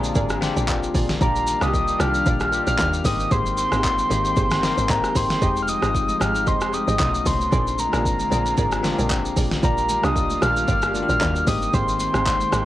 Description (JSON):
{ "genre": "amapiano", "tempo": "114 BPM", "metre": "4/4", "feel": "swing 55% on 16ths", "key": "unclear", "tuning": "A4 = 440 Hz", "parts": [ { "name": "soft octave-layered synth lead", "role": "melody", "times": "0.0-12.7 s", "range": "Bb5 to F6", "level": "-23 LUFS", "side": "equal", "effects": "chorus, cassette tape" }, { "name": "bell-like tine electric piano", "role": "accompaniment", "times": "0.0-12.7 s", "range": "Ab3 to Bb5", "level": "-28 LUFS", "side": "left 7 dB", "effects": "cassette tape" }, { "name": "airy breathy pad", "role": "sustained chords", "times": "0.0-12.7 s", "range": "C#3 to G5", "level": "-30 LUFS", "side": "right 1 dB", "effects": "chorus, cassette tape" }, { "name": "analog pluck", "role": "stabs", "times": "0.0-12.7 s", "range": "D4 to Eb5", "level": "-33 LUFS", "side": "right 7 dB", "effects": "chorus, cassette tape, tape echo" }, { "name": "woody log drum bass", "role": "bass", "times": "0.0-12.7 s", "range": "F1 to Eb2", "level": "-25 LUFS", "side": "equal", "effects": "none" }, { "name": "deep house drum kit", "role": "drums", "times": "0.0-12.7 s", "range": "handclaps, hi-hat, kick drum, rim click, shaker, snare drum", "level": "-24 LUFS", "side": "equal", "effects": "cassette tape" }, { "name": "congas", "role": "percussion", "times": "5.4-12.7 s", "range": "none", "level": "-37 LUFS", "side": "right 8 dB", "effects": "none" } ], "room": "light reverb", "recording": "home recording on cassette", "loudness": "-18 LUFS", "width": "side -14 dB against mid", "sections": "0.0-12.7 A section", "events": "tine electric piano fill 0.0-1.2", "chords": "0.0 Bb7; 1.2 Ebmaj9/Bb; 3.1 Abmaj7; 5.4 Fm9; 7.0 B9; 7.5 Bb7; 9.6 Ebmaj9/Bb; 11.5 Abmaj7", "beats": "0.16 0.68 | 1.21 1.74 2.26 2.79 | 3.31 3.84 4.37 4.89 | 5.42 5.95 6.47 7.00 | 7.53 8.05 8.58 9.10 | 9.63 10.16 10.68 11.21 | 11.74 12.26" }